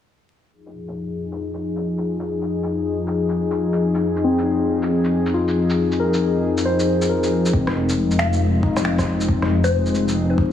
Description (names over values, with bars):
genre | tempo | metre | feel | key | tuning
future garage | 137 BPM | 4/4 | swing 62% on 16ths | F minor | A4 = 440 Hz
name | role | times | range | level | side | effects
airy breathy pad | sustained chords | 0.5-10.5 s | F2 to Ab4 | -21 LUFS | left 2 dB | chorus, sidechain pumping
electronic shaker, rim click and finger snaps | drums | 0.7-10.1 s | none | -29 LUFS | equal | studio reverb
tine electric piano | accompaniment | 4.2-10.5 s | C4 to C5 | -22 LUFS | left 2 dB | medium stereo tremolo, sidechain pumping, low-pass filter, analog delay
dark detuned saw bass | bass | 7.5-10.5 s | F1 | -22 LUFS | left 1 dB | sidechain pumping
electronic kick drum | drums | 7.5-10.5 s | none | -21 LUFS | equal | overdrive, studio reverb
mallet-like synth pluck | melody | 8.2-10.2 s | C5 to F5 | -26 LUFS | left 2 dB | chorus, phaser, analog delay
room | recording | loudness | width
moderate scoring stage reverb, RT60 2.0 s | heavily compressed radio sound, multiband compression, vinyl crackle, low-pass filter, small room ambience | -18 LUFS | side -10 dB against mid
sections
0.5-7.5 A section; 7.5-10.5 B section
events
fade-in on analog synth pad 0.5-7.5; filter sweep 0.5-7.5; filter sweep on tine electric piano 7.5-10.5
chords
0.5 Fm7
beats
| 0.53 0.96 1.40 1.84 | 2.28 2.72 3.15 3.59 | 4.03 4.47 4.91 5.34 | 5.78 6.22 6.66 7.10 | 7.53 7.97 8.41 8.85 | 9.29 9.72 10.16